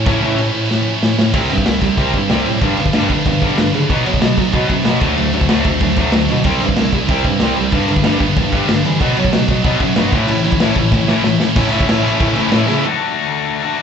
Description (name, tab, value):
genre	punk rock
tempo	188 BPM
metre	4/4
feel	straight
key	D major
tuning	A4 = 442 Hz
part	heavy high-gain guitar	riff	0.0-12.8 s	G2 to E4	-20 LUFS	right 2 dB	distortion
part	mellow bass clarinet	bass	0.0-12.8 s	C2 to A3	-20 LUFS	equal	none
part	overdriven electric guitar	riff	0.1-13.8 s	G2 to A4	-19 LUFS	left 8 dB	slapback echo
part	raw garage guitar	riff	0.1-12.8 s	G2 to A4	-20 LUFS	right 12 dB	overdrive, slapback echo
part	raw garage drum kit	drums	0.1-12.8 s	crash cymbal, kick drum, snare drum	-18 LUFS	equal	none
room	small room reverb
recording	live gig heard through the venue's PA, club reverb, nothing above 8.0 kHz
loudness	-13 LUFS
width	side -7 dB against mid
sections	0.0-1.3 A section; 1.3-11.6 B section; 11.6-12.8 C section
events	half time 0.0-1.3; drum fill 0.7-1.3, 10.9-11.6, 12.7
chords	0.0 A; 1.3 C; 2.6 G; 3.9 Bm; 5.0 D; 6.5 C; 7.7 G; 9.0 Bm; 10.1 A; 12.8 D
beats	| 0.06 0.38 0.70 1.02 | 1.34 1.66 1.98 2.30 | 2.62 2.94 3.26 3.58 | 3.90 4.22 4.54 4.86 | 5.18 5.50 5.82 6.14 | 6.46 6.78 7.10 7.42 | 7.74 8.05 8.37 8.69 | 9.01 9.33 9.65 9.97 | 10.29 10.61 10.93 11.24 | 11.56 11.88 12.20 12.52 | 12.84 13.16 13.48 13.80